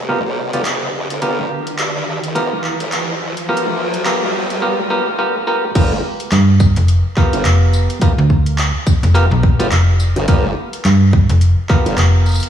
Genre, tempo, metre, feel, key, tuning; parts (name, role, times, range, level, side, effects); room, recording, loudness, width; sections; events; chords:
glitch hop; 106 BPM; 4/4; swing 58% on 16ths; A4 = 438 Hz
formant-sweep wobble bass; bass; 0.0-12.0 s; F1 to G2; -22 LUFS; equal; chorus, overdrive, high-pass filter
riser; sound effects; 0.0-4.6 s; -25 LUFS; right 1 dB
clav; stabs; 0.1-12.5 s; B3 to D5; -20 LUFS; equal; sidechain pumping, low-pass filter, tape echo
drum and bass drum kit; drums; 0.5-12.5 s; crash cymbal, handclaps, hi-hat, snare drum, tambourine; -24 LUFS; equal; overdrive
electronic kick drum; drums; 5.8-11.8 s; -12 LUFS; equal; overdrive
slap-like FM bass; bass; 6.3-12.4 s; F1 to G2; -11 LUFS; equal
moderate lush hall reverb, RT60 2.5 s; dreamy mix soaked in reverb, vinyl crackle, high-pass filter, small room ambience; -13 LUFS; side -10 dB against mid
0.0-5.8 A section; 5.8-12.5 B section
build-up 0.0-5.8; riser 0.0-4.6; drop 5.8-12.5
0.0 G7#9